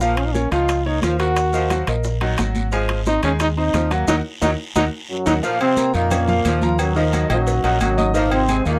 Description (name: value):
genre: latin, salsa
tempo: 177 BPM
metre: 4/4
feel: straight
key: Bb minor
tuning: A4 = 441 Hz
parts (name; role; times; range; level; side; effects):
- clear trombone; melody; 0.0-5.3 s; Bb3 to Gb4; -23 LUFS; equal; none
- clear saxophone section; second line; 0.0-8.8 s; Bb2 to Gb3; -30 LUFS; equal; none
- bright upright piano; accompaniment; 0.0-8.8 s; Eb3 to Eb6; -27 LUFS; equal; none
- deep dub fingered electric bass; bass; 0.0-8.8 s; Ab1 to F2; -24 LUFS; equal; none
- bongos and cowbell; percussion; 0.0-8.8 s; none; -33 LUFS; equal; none
- congas; percussion; 0.0-8.8 s; none; -30 LUFS; equal; none
- guiro; percussion; 0.0-8.8 s; none; -39 LUFS; equal; none
- maracas; percussion; 0.0-8.8 s; none; -40 LUFS; equal; none
- timbales and agogo bells; percussion; 0.2-8.7 s; none; -30 LUFS; equal; none
- warm trombone section; melody; 5.1-8.8 s; Gb2 to F4; -22 LUFS; equal; none
room: light reverb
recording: none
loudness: -19 LUFS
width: mono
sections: 0.0-5.4 A section; 5.4-8.8 B section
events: band accent 4.1-5.4; drum fill 4.6-5.4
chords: 0.0 Bbm; 1.4 Ebm; 2.7 Ab; 4.1 Ebm; 5.4 Bbm; 6.8 Ebm; 8.1 Ab